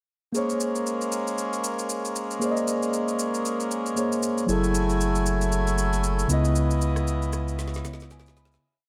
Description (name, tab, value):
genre	amapiano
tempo	116 BPM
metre	4/4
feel	swing 58% on 16ths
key	unclear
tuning	A4 = 442 Hz
part	mellow tine electric piano	accompaniment	0.3-8.7 s	Db3 to Cb6	-29 LUFS	equal	none
part	hand-pumped harmonium	sustained chords	0.3-8.6 s	Db3 to Ab5	-32 LUFS	equal	none
part	electronic shaker, rim click and snare drum	drums	0.3-8.7 s	none	-36 LUFS	equal	overdrive
part	saturated sub bass	bass	4.5-8.6 s	Gb1 to Db2	-29 LUFS	equal	none
room	moderate plate reverb, RT60 2.6 s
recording	dreamy mix soaked in reverb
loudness	-26 LUFS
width	mono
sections	0.3-8.6 breakdown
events	fade-out 6.6-8.6; drum fill 7.6-8.6; tine electric piano fill 7.6-8.6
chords	0.3 Bbm9; 4.5 Gbm9; 6.3 Dbm9